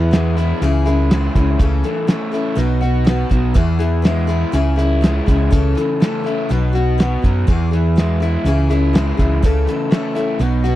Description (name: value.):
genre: folk rock and heartland rock.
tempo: 122 BPM.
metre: 4/4.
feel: straight.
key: E major.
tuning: A4 = 441 Hz.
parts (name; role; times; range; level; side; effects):
picked steel-string acoustic guitar; accompaniment; 0.0-10.8 s; B2 to A4; -22 LUFS; left 5 dB; none.
crunchy overdriven guitar; riff; 0.0-10.8 s; E2 to F#4; -22 LUFS; right 1 dB; none.
fingered electric bass; bass; 0.0-10.8 s; B1 to F#2; -16 LUFS; equal; none.
cloth-damped thuddy drum kit; drums; 0.1-10.8 s; hi-hat, kick drum, snare drum; -15 LUFS; equal; none.
room: little or no reverb.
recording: dry, close 1970s-style studio recording.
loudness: -14 LUFS.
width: side -14 dB against mid.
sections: 0.0-10.8 A section.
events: none.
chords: 0.0 E; 0.6 C#m; 1.6 A/C#; 2.6 B; 3.6 E; 4.5 C#m; 5.5 A/C#; 6.5 B; 7.5 E; 8.5 C#m; 9.4 A/C#.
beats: 0.13 0.62 1.11 | 1.60 2.09 2.58 3.06 | 3.56 4.04 4.53 5.02 | 5.51 6.00 6.49 6.98 | 7.47 7.96 8.45 8.94 | 9.43 9.92 10.41.